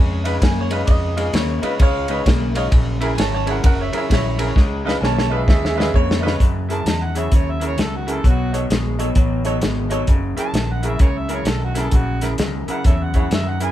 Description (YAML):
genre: electric blues shuffle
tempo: 130 BPM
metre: 4/4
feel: swing 63% on 8ths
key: F# mixolydian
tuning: A4 = 440 Hz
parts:
  - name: bright grand piano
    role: accompaniment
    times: 0.0-13.7 s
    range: D#4 to A5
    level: -25 LUFS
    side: right 2 dB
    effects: none
  - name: electric guitar through a small old amp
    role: riff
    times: 0.0-13.7 s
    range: F#2 to A#3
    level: -25 LUFS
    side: left 1 dB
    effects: none
  - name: vintage muted fingered electric bass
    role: bass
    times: 0.0-13.7 s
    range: F#1 to F#2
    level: -23 LUFS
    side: equal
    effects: none
  - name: warm soul drum kit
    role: drums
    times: 0.3-13.7 s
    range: hi-hat, kick drum, ride cymbal, snare drum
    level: -18 LUFS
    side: equal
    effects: none
  - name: overdriven harmonica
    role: melody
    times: 6.7-13.7 s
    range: F#4 to A5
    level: -27 LUFS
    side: right 2 dB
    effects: none
room: light reverb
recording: band playing live in one room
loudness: -16 LUFS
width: side -13 dB against mid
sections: 0.0-6.4 A section; 6.4-13.7 B section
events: drum fill 4.6-6.4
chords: 0.0 C#7; 2.7 F#7; 4.6 C#7; 6.4 F#7; 8.2 B7; 10.1 F#7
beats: 0.42 | 0.89 1.34 1.80 2.26 | 2.72 3.18 3.64 4.10 | 4.56 5.02 5.48 5.94 | 6.40 6.86 7.32 7.78 | 8.24 8.70 9.16 9.62 | 10.09 10.55 11.01 11.47 | 11.93 12.39 12.85 13.31